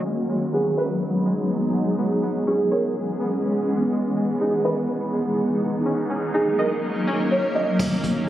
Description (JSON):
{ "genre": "hip hop, atmospheric cloud-rap", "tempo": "124 BPM", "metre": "4/4", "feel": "half-time", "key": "G# minor", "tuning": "A4 = 437 Hz", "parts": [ { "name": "felt-muted upright piano", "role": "melody", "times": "0.0-7.8 s", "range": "G#4 to D#5", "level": "-25 LUFS", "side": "right 1 dB", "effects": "low-pass filter, ping-pong delay" }, { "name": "granular cloud pad", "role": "sustained chords", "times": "0.0-8.3 s", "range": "D#3 to A#4", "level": "-22 LUFS", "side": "equal", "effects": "built-in reverb" }, { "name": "string-like resonator pluck", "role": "arpeggios", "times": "0.0-7.8 s", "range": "G#3 to D#5", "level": "-31 LUFS", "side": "left 1 dB", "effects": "chorus, low-pass filter, ping-pong delay" }, { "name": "long sustained 808-style bass", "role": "bass", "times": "7.8-8.3 s", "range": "G#1", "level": "-30 LUFS", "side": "equal", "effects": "none" }, { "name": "jazz brush drum kit", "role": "drums", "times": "7.8-8.1 s", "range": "crash cymbal, hi-hat, kick drum", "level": "-27 LUFS", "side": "equal", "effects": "none" } ], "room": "light reverb, studio reverb", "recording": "recorded on a phone in the room, club reverb, compression, low-pass filter", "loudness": "-20 LUFS", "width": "side -12 dB against mid", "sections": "0.1-7.8 A section", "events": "filter sweep 0.1-7.8", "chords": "0.1 G#m7; 2.0 C#m7; 3.9 Emaj7; 5.9 D#m7" }